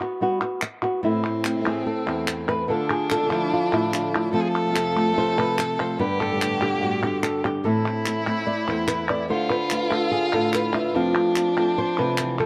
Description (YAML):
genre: flamenco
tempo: 145 BPM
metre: 4/4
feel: straight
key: unclear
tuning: A4 = 440 Hz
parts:
  - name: flamenco guitar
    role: melody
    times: 0.0-12.5 s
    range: E2 to D5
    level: -26 LUFS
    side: equal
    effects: none
  - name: palmas hand claps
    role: percussion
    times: 0.0-12.5 s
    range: none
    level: -32 LUFS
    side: equal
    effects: none
  - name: flamenco guitar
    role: stabs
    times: 1.0-12.5 s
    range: F2 to G4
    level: -32 LUFS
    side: equal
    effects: analog delay
  - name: clear violin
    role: second line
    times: 1.1-12.5 s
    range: C4 to A4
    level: -30 LUFS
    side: equal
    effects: none
room: moderate spring reverb, RT60 1.8 s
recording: none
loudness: -23 LUFS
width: mono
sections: 0.0-1.0 A section; 1.0-12.5 B section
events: none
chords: 0.0 Gmaj7; 1.0 Am; 2.7 Dm; 4.3 F; 6.0 Gadd9; 7.7 Am; 9.3 Dm; 11.0 F